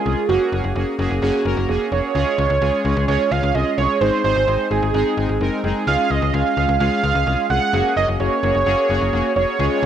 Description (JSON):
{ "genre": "synth-pop", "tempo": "129 BPM", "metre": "4/4", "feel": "straight", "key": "Db major", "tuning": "A4 = 441 Hz", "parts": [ { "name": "wide unison lead", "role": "melody", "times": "0.0-9.9 s", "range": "Gb4 to Gb5", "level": "-20 LUFS", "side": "right 6 dB", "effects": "none" }, { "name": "analog synth brass", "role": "accompaniment", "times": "0.0-9.9 s", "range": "Ab3 to Bb4", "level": "-22 LUFS", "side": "left 1 dB", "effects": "chorus, cassette tape" }, { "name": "slap-like FM bass", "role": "bass", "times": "0.1-9.9 s", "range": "F1 to Db2", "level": "-22 LUFS", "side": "left 2 dB", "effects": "none" }, { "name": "noise sweep", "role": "sound effects", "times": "9.7-9.9 s", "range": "none", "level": "-33 LUFS", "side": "left 3 dB", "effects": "none" } ], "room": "moderate lush hall reverb, RT60 2.4 s", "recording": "home recording on cassette", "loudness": "-16 LUFS", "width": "side -9 dB against mid", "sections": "0.0-9.9 A section", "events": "none", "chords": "0.3 Gbadd9; 2.1 Db; 4.0 Ab; 5.9 Db; 7.7 Gbadd9" }